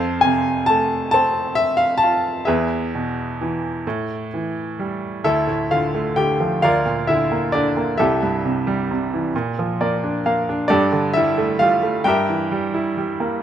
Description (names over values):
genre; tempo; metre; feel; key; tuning
classical, lyrical solo piano; 44 BPM (dotted quarters); 6/8; rubato; A harmonic minor, D minor from 5.2 s; A4 = 439 Hz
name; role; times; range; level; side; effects
bright baby grand piano; solo; 0.0-13.4 s; C2 to A5; -18 LUFS; equal; none
room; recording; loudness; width
light reverb; close, detailed microphones; -18 LUFS; side -10 dB against mid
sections
0.0-5.2 A section; 5.2-13.4 B section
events
grand piano fill 9.3-10.7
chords
0.0 F; 2.5 E; 3.9 A5; 5.2 Dmadd9; 6.6 Bb/D; 8.0 C6; 9.3 Bb; 10.7 Gsus2; 12.0 Edim/G